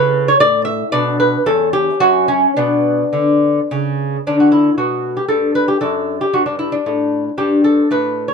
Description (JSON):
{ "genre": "classical, baroque-style dance for lute", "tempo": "103-119 BPM", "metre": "3/4", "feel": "rubato", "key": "B minor, D major from 4.3 s", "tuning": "A4 = 440 Hz", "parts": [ { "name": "lute", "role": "solo", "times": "0.0-8.3 s", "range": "E2 to E5", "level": "-13 LUFS", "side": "equal", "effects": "none" } ], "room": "moderate small room reverb, RT60 0.6 s", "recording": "dark, warm production", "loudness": "-13 LUFS", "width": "side -5 dB against mid", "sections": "0.0-4.3 A section; 4.3-8.3 A section", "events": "none", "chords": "0.0 E5; 0.9 Bm; 1.5 C#dim/E; 2.0 F#5; 2.6 Bm; 4.3 D5; 5.8 D/F#; 7.4 G5", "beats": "0.41 | 0.93 1.46 2.00 | 2.55 3.12 3.70 | 4.26 4.79 5.30 | 5.83 6.34 6.87 | 7.39 7.91" }